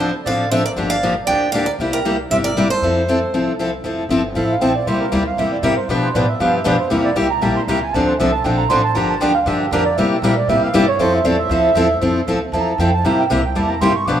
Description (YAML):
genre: acoustic string swing (jazz manouche)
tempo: 235 BPM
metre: 4/4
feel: swing 55% on 8ths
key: F major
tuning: A4 = 440 Hz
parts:
  - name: picked steel-string acoustic guitar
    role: melody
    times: 0.0-3.5 s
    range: Bb4 to G5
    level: -21 LUFS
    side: right 2 dB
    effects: none
  - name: mellow accordion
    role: second line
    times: 0.0-14.2 s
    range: G4 to D6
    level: -21 LUFS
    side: right 5 dB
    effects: none
  - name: picked steel-string acoustic guitar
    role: accompaniment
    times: 0.0-14.2 s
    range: B2 to B4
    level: -17 LUFS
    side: left 2 dB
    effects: none
  - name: upright bass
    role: bass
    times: 0.0-14.2 s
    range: F1 to C3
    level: -25 LUFS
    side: equal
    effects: none
room: moderate plate reverb, RT60 3.1 s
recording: rough home demo mix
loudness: -15 LUFS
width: side -10 dB against mid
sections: 0.0-3.8 A section; 3.8-12.0 B section; 12.0-14.2 B section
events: accordion solo 3.8-14.2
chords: 0.0 Dm7; 0.8 Gm7; 1.8 C7; 2.8 Fmaj7; 4.9 C7; 5.9 G7; 6.9 C7; 7.9 Dm7; 9.0 Gm7; 10.0 C7; 11.0 Fmaj7; 13.0 C7